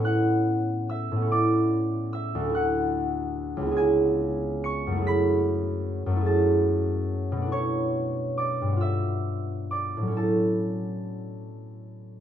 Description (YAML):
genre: classical, solo harp piece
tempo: 43-50 BPM (dotted quarters)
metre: 6/8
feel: rubato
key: unclear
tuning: A4 = 441 Hz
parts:
  - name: concert harp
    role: solo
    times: 0.0-12.2 s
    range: C#2 to C#7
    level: -24 LUFS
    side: equal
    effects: none
room: light reverb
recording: minimal, uncompressed stereo recording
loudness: -23 LUFS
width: side -10 dB against mid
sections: 0.0-12.2 A section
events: none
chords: 0.1 Bm11/A; 2.5 Dadd9; 3.8 C#m7; 5.1 F#m9; 7.5 Bm11; 8.8 G9; 10.2 A6